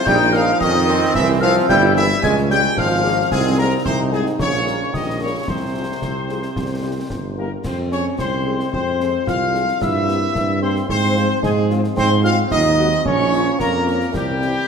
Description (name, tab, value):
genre	military-style march for wind band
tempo	111 BPM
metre	2/4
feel	straight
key	F minor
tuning	A4 = 442 Hz
part	warm trumpet section	melody	0.0-14.7 s	G4 to Ab5	-23 LUFS	left 2 dB	none
part	mellow wooden piccolo	second line	0.0-14.7 s	G5 to Ab6	-25 LUFS	left 4 dB	none
part	bright trombone section	sustained chords	0.0-14.7 s	E3 to E4	-27 LUFS	right 2 dB	none
part	clear euphonium	second line	0.1-14.7 s	Ab2 to F4	-22 LUFS	right 2 dB	none
part	mellow tuba	bass	0.1-14.6 s	G1 to Ab2	-21 LUFS	right 1 dB	none
part	concert snare drum, concert bass drum and clash cymbals	drums	0.1-14.5 s	none	-29 LUFS	left 2 dB	none
part	mellow French horn section	accompaniment	0.3-14.5 s	F3 to Bb4	-29 LUFS	left 5 dB	none
room	wet scoring stage reverb, RT60 1.9 s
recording	none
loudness	-16 LUFS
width	side -6 dB against mid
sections	0.0-7.6 A section; 7.6-14.7 B section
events	none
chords	0.1 Bbm; 1.1 C7; 2.2 Db; 3.3 Ab/C; 4.4 Gdim/Bb; 5.5 Fm/C; 6.6 C; 7.6 Fm; 9.8 C7/G; 10.9 Fm/Ab; 12.0 Ab7; 13.1 Bbm; 14.1 C